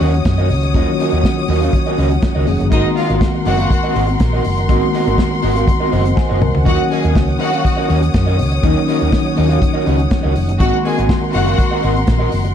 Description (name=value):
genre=disco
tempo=122 BPM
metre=4/4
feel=straight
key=Eb dorian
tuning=A4 = 440 Hz
part: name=electric guitar at the edge of break-up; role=accompaniment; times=0.0-12.5 s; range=C4 to F5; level=-21 LUFS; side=right 4 dB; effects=none
part: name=mellow tine electric piano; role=accompaniment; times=0.0-12.5 s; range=Eb3 to Ab5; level=-20 LUFS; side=left 2 dB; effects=medium stereo tremolo
part: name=warm studio string section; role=sustained chords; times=0.0-12.5 s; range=Bb4 to Eb6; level=-23 LUFS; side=left 3 dB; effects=none
part: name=hollow-body short-scale fingered electric bass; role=bass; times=0.0-12.5 s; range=F1 to Gb2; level=-17 LUFS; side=equal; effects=none
part: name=warm soul drum kit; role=drums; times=0.0-12.5 s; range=hi-hat, kick drum, snare drum, toms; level=-18 LUFS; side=equal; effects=none
part: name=clear studio string section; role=second line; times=2.7-11.8 s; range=Eb4 to Ab5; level=-22 LUFS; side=left 2 dB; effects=none
room=light reverb, studio ambience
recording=dark, warm production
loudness=-13 LUFS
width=side -9 dB against mid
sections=0.0-12.5 A section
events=tine electric piano fill 5.7-6.7; drum fill 6.2-6.7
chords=0.0 Ebm7; 2.7 Ab9; 6.7 Ebm7; 10.6 Ab9